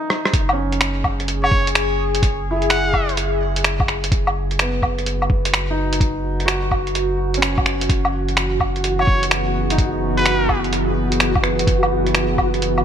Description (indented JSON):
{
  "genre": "future garage",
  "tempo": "127 BPM",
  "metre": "4/4",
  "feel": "swing 66% on 16ths",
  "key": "unclear",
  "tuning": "A4 = 440 Hz",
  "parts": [
    { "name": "felt-muted upright piano", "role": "accompaniment", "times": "0.0-12.8 s", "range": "B3 to G#4", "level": "-26 LUFS", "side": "right 1 dB", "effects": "sidechain pumping, digital delay" },
    { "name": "lo-fi sampler-style drum kit", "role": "drums", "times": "0.1-12.8 s", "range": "finger snaps, hi-hat, rim click, woodblock", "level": "-21 LUFS", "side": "equal", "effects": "none" },
    { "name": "warm sub bass", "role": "bass", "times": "0.3-12.8 s", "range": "F#1", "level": "-24 LUFS", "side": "equal", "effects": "sidechain pumping" },
    { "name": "electronic kick drum", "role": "drums", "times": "0.3-12.5 s", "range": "none", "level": "-20 LUFS", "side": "equal", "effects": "none" },
    { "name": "warbly tape-like pad", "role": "sustained chords", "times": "0.7-12.8 s", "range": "E3 to G#4", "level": "-24 LUFS", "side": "equal", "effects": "chorus, built-in reverb, sidechain pumping" },
    { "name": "trumpet with straight mute", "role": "melody", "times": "1.4-3.2, 9.0-10.6 s", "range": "B4 to F#5", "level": "-24 LUFS", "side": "right 1 dB", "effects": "digital delay" },
    { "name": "flickering grainy texture", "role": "texture", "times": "9.8-12.8 s", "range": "F#4", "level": "-30 LUFS", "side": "left 3 dB", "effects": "none" }
  ],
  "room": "light reverb, digital ambience",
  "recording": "bright 1980s-style digital production",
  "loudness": "-16 LUFS",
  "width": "side -9 dB against mid",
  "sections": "0.3-12.8 A section",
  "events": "break 0.0-0.3; drum fill 0.1",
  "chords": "0.3 Eadd9/F#"
}